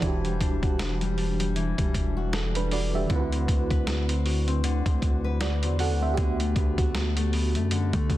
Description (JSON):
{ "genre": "contemporary R&B", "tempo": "78 BPM", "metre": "4/4", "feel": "swing 58% on 16ths", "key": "unclear", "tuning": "A4 = 439 Hz", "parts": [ { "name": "FM electric piano with tremolo", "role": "accompaniment", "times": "0.0-8.2 s", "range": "D3 to A5", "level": "-31 LUFS", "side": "right 5 dB", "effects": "none" }, { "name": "nylon-string guitar", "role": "arpeggios", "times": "0.0-8.2 s", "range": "D3 to B4", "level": "-31 LUFS", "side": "left 7 dB", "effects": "digital delay" }, { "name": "long sustained 808-style bass", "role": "bass", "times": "0.0-8.2 s", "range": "E1 to D3", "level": "-27 LUFS", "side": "equal", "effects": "none" }, { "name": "dusty soul sampler-style drum kit", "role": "drums", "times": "0.0-8.2 s", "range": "hi-hat, kick drum, snare drum", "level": "-28 LUFS", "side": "equal", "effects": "vintage 12-bit sampler grit" } ], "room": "little or no reverb", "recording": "dense, heavily limited modern master", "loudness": "-23 LUFS", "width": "side -15 dB against mid", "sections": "0.0-8.2 A section", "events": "none", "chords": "0.0 Em9; 3.1 D13; 6.2 Gmaj9/D" }